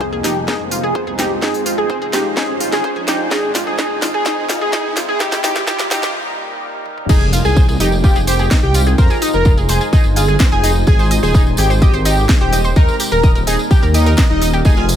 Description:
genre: melodic techno.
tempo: 127 BPM.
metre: 4/4.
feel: straight.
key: F minor.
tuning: A4 = 440 Hz.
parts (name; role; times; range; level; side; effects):
wide unison lead; melody; 0.0-14.8 s; Eb4 to Bb4; -20 LUFS; left 1 dB; wide subtle chorus, sidechain pumping, ping-pong delay.
deep dark ambient pad; sustained chords; 0.0-15.0 s; G3 to C5; -25 LUFS; right 1 dB; chorus, built-in reverb, vintage 12-bit sampler grit, sidechain pumping.
analog pluck; arpeggios; 0.0-14.8 s; Eb4 to Eb6; -23 LUFS; equal; chorus, sidechain pumping, ping-pong delay.
swelling detuned saw bass; bass; 0.0-15.0 s; Eb1 to F2; -17 LUFS; equal; sidechain pumping.
analog drone; drone; 0.0-6.1 s; F2; -35 LUFS; right 1 dB; none.
electronic kick drum; drums; 0.0-14.7 s; none; -12 LUFS; equal; high-pass filter on kick, small room ambience.
riser and impact; sound effects; 0.0-9.0 s; none; -28 LUFS; right 1 dB; none.
house drum kit; drums; 0.2-15.0 s; crash cymbal, hi-hat, snare drum, toms; -21 LUFS; equal; small room ambience.
big bright polysynth; second line; 7.1-14.8 s; Eb5 to Bb5; -27 LUFS; right 4 dB; chorus, phaser, cassette tape, sidechain pumping, ping-pong delay.
tambourine; percussion; 7.1-15.0 s; none; -27 LUFS; right 1 dB; none.
room: digital ambience.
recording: high-pass filter.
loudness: -12 LUFS.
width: side -10 dB against mid.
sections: 0.0-7.1 A section; 7.1-15.0 B section.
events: build-up 0.0-7.1; drum fill 0.0-6.1, 6.9; filter sweep on analog synth lead 0.0-7.1; filter sweep 0.0-7.1; riser 0.0-6.1; break 6.1-7.1; drop 7.1-15.0; impact 7.1-9.0.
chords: 0.0 Fm7; 3.3 Ab; 5.2 Eb; 7.1 Fm7; 10.9 Ab; 12.8 Eb.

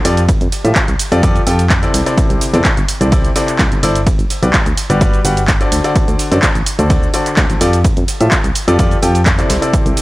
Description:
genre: piano house.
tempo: 127 BPM.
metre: 4/4.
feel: straight.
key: unclear.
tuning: A4 = 443 Hz.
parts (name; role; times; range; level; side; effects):
clear baby grand piano; riff; 0.0-10.0 s; C3 to G5; -17 LUFS; left 1 dB; sidechain pumping, analog delay.
solid FM bass; bass; 0.1-9.9 s; G1 to A2; -15 LUFS; equal; sidechain pumping.
breakbeat sampler-style drum kit; drums; 0.1-10.0 s; hi-hat, ride cymbal, snare drum; -28 LUFS; right 1 dB; none.
punchy analog drum machine; drums; 0.1-10.0 s; handclaps, hi-hat, shaker; -19 LUFS; right 1 dB; none.
electronic kick drum; drums; 0.3-9.8 s; none; -15 LUFS; equal; none.
room: little or no reverb.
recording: dry, gritty hardware recording, transformer saturation.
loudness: -11 LUFS.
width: side -19 dB against mid.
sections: 0.0-10.0 A section.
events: none.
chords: 0.1 Fmaj9; 1.9 C69; 4.1 Gmaj7; 5.7 D7; 7.6 Fmaj9; 9.5 C69.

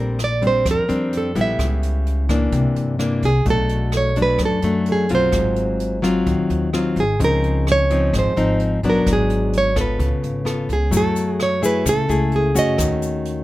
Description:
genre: bossa nova.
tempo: 128 BPM.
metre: 4/4.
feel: straight.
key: unclear.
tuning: A4 = 440 Hz.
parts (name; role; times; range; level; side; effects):
nylon-string guitar; melody; 0.0-13.4 s; G#4 to E5; -21 LUFS; right 3 dB; none.
nylon-string guitar; accompaniment; 0.0-13.4 s; F#2 to A4; -20 LUFS; left 2 dB; none.
upright bass; bass; 0.0-13.4 s; G#1 to G2; -23 LUFS; equal; none.
jazz brush drum kit; drums; 0.2-13.4 s; hi-hat, kick drum, rim click; -28 LUFS; equal; none.
tube shaker; percussion; 10.9-13.3 s; none; -31 LUFS; left 7 dB; none.
room: light reverb.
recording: none.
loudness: -16 LUFS.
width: side -16 dB against mid.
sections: 0.0-13.4 A section.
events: none.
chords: 0.0 Bb69; 1.6 C#m7b5; 2.5 C9; 3.5 Bm7; 5.3 G#6; 7.2 C#maj9; 9.1 G#m7b5; 10.0 C#7b13; 10.9 F#m9; 12.8 D#m7b5.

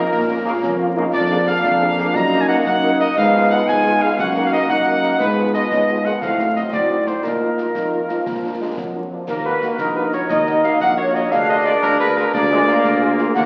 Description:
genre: military-style march for wind band.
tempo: 118 BPM (dotted quarters).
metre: 6/8.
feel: straight.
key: Eb minor.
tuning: A4 = 441 Hz.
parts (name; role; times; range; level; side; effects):
mellow cornet; melody; 0.0-13.5 s; Bb4 to Bb5; -24 LUFS; equal; none.
mellow woodwind section; second line; 0.0-13.5 s; Gb4 to Bb5; -26 LUFS; equal; none.
warm euphonium; second line; 0.0-9.0 s; A3 to Gb4; -26 LUFS; equal; none.
dark tuba; bass; 0.0-13.5 s; Bb1 to Bb2; -25 LUFS; equal; none.
concert snare drum, concert bass drum and clash cymbals; drums; 0.1-13.5 s; none; -37 LUFS; equal; none.
warm French horn section; accompaniment; 0.3-13.2 s; Bb3 to Bb4; -30 LUFS; equal; none.
warm trombone section; sustained chords; 0.4-13.5 s; Db3 to Eb4; -26 LUFS; equal; none.
hollow small flute group; second line; 9.3-13.5 s; Bb4 to Gb5; -22 LUFS; equal; none.
room: wet scoring stage reverb, RT60 1.6 s.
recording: very old 78 rpm record, vinyl crackle.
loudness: -18 LUFS.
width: mono.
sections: 0.0-9.3 A section; 9.3-13.5 B section.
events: none.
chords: 0.0 Bbm; 1.1 Bb7/F; 2.2 Ebm/Gb; 3.2 Fdim/Ab; 4.2 Ebm/Gb; 5.2 Fm7b5/Ab; 6.2 Adim7; 7.2 Bbsus4; 8.3 Bb; 9.3 Ebm; 11.3 Bb7/D.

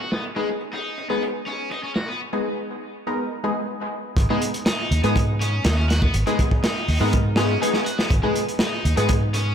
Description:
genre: breakbeat, breaks.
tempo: 122 BPM.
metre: 4/4.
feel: straight.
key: G# minor.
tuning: A4 = 441 Hz.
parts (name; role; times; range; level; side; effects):
cranked stack guitar; riff; 0.0-9.5 s; G#3 to F#4; -29 LUFS; left 1 dB; overdrive, vintage 12-bit sampler grit, low-pass filter, dub echo.
crunchy breakbeat drum kit; drums; 0.1-9.5 s; hi-hat, kick drum, snare drum; -23 LUFS; equal; low-pass filter on kick, low-pass filter on hats, low-pass filter on snare, low-pass filter on room, dub echo.
orchestra-hit-like synth stab; stabs; 0.4-9.1 s; G#3 to A#4; -25 LUFS; left 1 dB; built-in reverb, dub echo.
fingered electric bass; bass; 4.2-9.5 s; G#1 to G#2; -21 LUFS; equal; none.
room: light reverb, small room ambience.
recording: echo-heavy mix.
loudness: -20 LUFS.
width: side -8 dB against mid.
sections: 0.0-4.2 A section; 4.2-9.5 B section.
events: drop 4.2-9.5.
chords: 0.0 G#m.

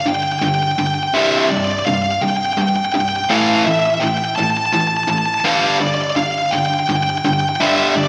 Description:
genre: rock.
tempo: 56 BPM (dotted quarters).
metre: 6/8.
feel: straight.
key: unclear.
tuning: A4 = 439 Hz.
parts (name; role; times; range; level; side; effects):
bluesy overdriven lead guitar; melody; 0.0-8.1 s; D5 to A5; -19 LUFS; equal; distortion, digital delay.
overdriven electric guitar; riff; 0.0-8.1 s; C2 to A3; -20 LUFS; equal; slapback echo.
room: wet lush hall reverb, RT60 2.0 s.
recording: big arena sound.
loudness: -17 LUFS.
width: mono.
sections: 0.0-8.1 A section.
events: build-up 0.0-8.1.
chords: 0.0 G5; 1.1 C5; 3.3 A5; 5.5 G5.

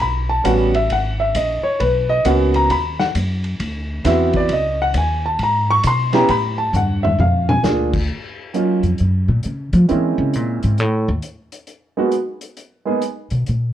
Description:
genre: jazz piano trio.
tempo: 134 BPM.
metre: 4/4.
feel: swing 65% on 8ths.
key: G# minor, Eb minor from 8.1 s.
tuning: A4 = 441 Hz.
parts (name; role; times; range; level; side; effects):
warm concert grand piano; melody; 0.0-13.0 s; Gb3 to C#6; -17 LUFS; right 1 dB; none.
upright bass; bass; 0.0-13.7 s; G#1 to F3; -19 LUFS; equal; tube saturation.
vintage drum kit; drums; 0.0-13.6 s; crash cymbal, hi-hat, kick drum, ride cymbal, snare drum, toms; -26 LUFS; left 1 dB; none.
room: moderate studio reverb, RT60 0.9 s.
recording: worn, warbling old tape, cassette tape, warbly pitch drift.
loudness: -16 LUFS.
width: side -11 dB against mid.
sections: 0.0-8.1 A section; 8.1-13.7 A section.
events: grand piano solo 0.0-8.1; drum fill 6.7-7.6; upright bass solo 8.1-13.7.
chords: 0.0 D#7#9b13 (rootless); 0.9 G#m11; 2.7 D#m; 3.6 D13; 4.5 C#7sus2; 6.3 Gmaj9; 7.2 A#7; 8.1 Ebm9 (rootless); 9.9 Bbm7b5; 10.8 N.C.; 11.7 Abm.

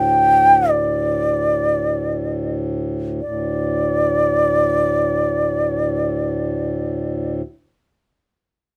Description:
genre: indian classical, Hindustani.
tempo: free time.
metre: none.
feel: none.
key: unclear.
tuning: A4 = 441 Hz.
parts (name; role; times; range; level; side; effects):
mellow bansuri; melody; 0.0-7.3 s; D5 to G5; -20 LUFS; equal; none.
pedal harmonium; drone; 0.0-7.4 s; D2 to A2; -25 LUFS; equal; none.
room: light reverb.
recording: none.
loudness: -19 LUFS.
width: mono.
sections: 0.0-3.2 A section; 3.2-6.6 B section.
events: none.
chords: none.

